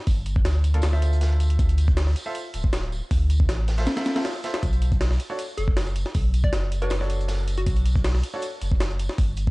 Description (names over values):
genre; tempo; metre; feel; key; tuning
drum and bass, jungle; 158 BPM; 4/4; straight; unclear; A4 = 440 Hz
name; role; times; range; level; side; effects
saturated sub bass; bass; 0.1-9.5 s; D1 to D2; -22 LUFS; equal; none
crunchy breakbeat drum kit; drums; 0.1-9.5 s; hi-hat, snare drum, tambourine; -40 LUFS; right 2 dB; high-pass filter on hats, small room ambience, high-pass filter on snare, high-pass filter on perc, high-pass filter on room
jungle sampler-style drum kit; drums; 0.1-9.5 s; hi-hat, kick drum, snare drum; -24 LUFS; equal; small room ambience
bright grand piano; stabs; 0.7-8.4 s; Bb3 to E5; -34 LUFS; right 1 dB; vintage 12-bit sampler grit, dub echo
hollow square pluck; melody; 5.6-8.0 s; F#4 to D5; -35 LUFS; left 2 dB; chorus, dub echo
room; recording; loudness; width
small room ambience; dark, warm production, vinyl crackle, nothing above 10.9 kHz; -21 LUFS; side -23 dB against mid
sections
0.0-9.5 A section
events
break 3.9-4.6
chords
0.0 G5; 0.8 Dm9; 4.6 Bm9